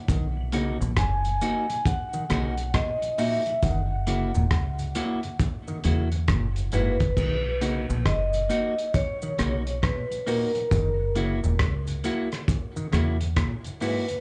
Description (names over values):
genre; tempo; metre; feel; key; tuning
roots reggae; 68 BPM; 4/4; swing 63% on 16ths; B major; A4 = 441 Hz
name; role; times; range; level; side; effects
auto-wah clav; arpeggios; 0.1-14.0 s; G#2 to D#3; -35 LUFS; equal; none
deep dub fingered electric bass; bass; 0.1-13.4 s; E1 to E2; -28 LUFS; equal; none
cloth-damped thuddy drum kit; drums; 0.1-14.2 s; crash cymbal, hi-hat, kick drum, rim click; -30 LUFS; equal; none
cabasa; percussion; 0.1-14.1 s; none; -50 LUFS; equal; none
tonewheel organ; accompaniment; 0.4-14.1 s; F#2 to E4; -41 LUFS; equal; none
clean electric guitar; accompaniment; 0.5-14.1 s; A#3 to F#4; -34 LUFS; equal; plate reverb, slapback echo
vibraphone with medium hard mallets; melody; 1.0-14.2 s; A#4 to G#5; -32 LUFS; equal; plate reverb, tape echo
room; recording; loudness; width
light reverb; live gig heard through the venue's PA, cassette tape, club reverb, nothing above 10.3 kHz; -26 LUFS; mono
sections
0.0-7.2 A section; 7.2-14.2 B section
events
none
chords
0.1 Bmaj7; 3.6 F#7; 7.2 Bmaj7; 10.7 F#7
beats
| 0.09 0.97 1.86 2.74 | 3.63 4.51 5.40 6.28 | 7.17 8.05 8.94 9.83 | 10.71 11.60 12.48 13.37